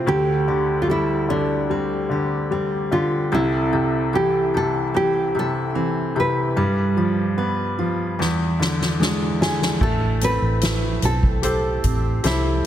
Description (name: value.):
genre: pop ballad.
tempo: 74 BPM.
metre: 4/4.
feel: straight.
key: A minor.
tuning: A4 = 440 Hz.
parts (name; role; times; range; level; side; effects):
nylon-string guitar; melody; 0.0-12.7 s; D4 to B4; -23 LUFS; equal; none.
bright grand piano; accompaniment; 0.0-12.7 s; C2 to C5; -23 LUFS; left 2 dB; none.
fingerpicked steel-string acoustic guitar; arpeggios; 0.0-12.7 s; A2 to B4; -26 LUFS; right 6 dB; none.
soft-mallet drum kit; drums; 8.2-12.4 s; crash cymbal, hi-hat, kick drum, snare drum; -23 LUFS; equal; none.
vintage muted fingered electric bass; bass; 9.8-12.6 s; A1 to C2; -22 LUFS; equal; none.
room: light reverb.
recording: none.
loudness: -18 LUFS.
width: side -11 dB against mid.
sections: 0.0-9.8 A section; 9.8-12.7 B section.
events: drum fill 8.2-9.8.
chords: 0.1 D7sus4; 3.3 C6; 6.6 G7; 8.2 E7; 9.8 Am7.